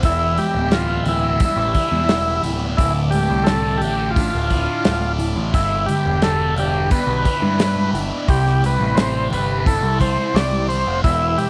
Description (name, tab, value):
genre	psychedelic rock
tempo	87 BPM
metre	4/4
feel	straight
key	unclear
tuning	A4 = 440 Hz
part	combo organ	melody	0.0-11.5 s	E4 to D5	-24 LUFS	equal	slapback echo
part	combo organ	sustained chords	0.0-11.5 s	D5 to E6	-36 LUFS	equal	none
part	thick fuzz guitar	riff	0.0-11.5 s	D2 to C5	-26 LUFS	equal	distortion, phaser
part	growling picked electric bass	bass	0.0-11.4 s	D1 to G2	-24 LUFS	equal	overdrive
part	damped 70s drum kit	drums	0.0-11.5 s	hi-hat, kick drum, snare drum	-22 LUFS	equal	none
part	congas	percussion	0.4-11.5 s	none	-32 LUFS	equal	none
room	moderate spring reverb, RT60 2.1 s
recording	none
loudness	-19 LUFS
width	mono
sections	0.0-11.5 A section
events	none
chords	0.0 Em; 2.8 Dmadd9; 5.5 G6; 8.3 Cadd9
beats	| 0.04 0.73 1.42 2.10 | 2.79 3.48 4.16 4.85 | 5.54 6.22 6.91 7.60 | 8.29 8.97 9.66 10.35 | 11.04